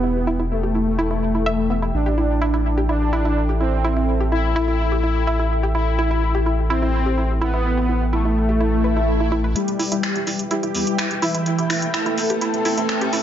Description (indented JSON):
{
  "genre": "melodic techno",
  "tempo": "126 BPM",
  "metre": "4/4",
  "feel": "straight",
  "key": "E minor",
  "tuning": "A4 = 442 Hz",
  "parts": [
    { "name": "analog synth brass", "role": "melody", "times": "0.0-13.2 s", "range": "E3 to A4", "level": "-22 LUFS", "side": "left 1 dB", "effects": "chorus, dub echo" },
    { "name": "sweeping resonant pad", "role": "sustained chords", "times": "0.0-13.2 s", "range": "E4 to G5", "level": "-30 LUFS", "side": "equal", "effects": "chorus" },
    { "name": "analog pluck", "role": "arpeggios", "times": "0.0-13.2 s", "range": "B3 to E5", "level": "-26 LUFS", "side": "right 2 dB", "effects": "chorus, dub echo" },
    { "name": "round analog bass", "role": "bass", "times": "0.0-13.2 s", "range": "D1 to E2", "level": "-22 LUFS", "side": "equal", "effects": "high-pass filter" },
    { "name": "swell and riser", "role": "sound effects", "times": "8.7-13.2 s", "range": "none", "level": "-30 LUFS", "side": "right 1 dB", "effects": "none" },
    { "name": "house drum kit", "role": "drums", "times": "9.6-13.2 s", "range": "finger snaps, hi-hat", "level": "-25 LUFS", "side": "equal", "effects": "overdrive, dub echo" }
  ],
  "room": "light reverb, digital ambience",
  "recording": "echo-heavy mix, nothing above 7.4 kHz",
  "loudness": "-18 LUFS",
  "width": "side -10 dB against mid",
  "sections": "0.0-9.6 A section; 9.6-13.2 B section",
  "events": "filter sweep on analog polysynth 0.0-9.6, 9.6-13.2; swell 8.7-9.6; build-up 9.6-13.2; riser 9.6-13.2; filter sweep on synth arpeggio sound 9.6-13.2",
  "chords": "0.0 Em; 1.9 A7(no3); 9.6 Em"
}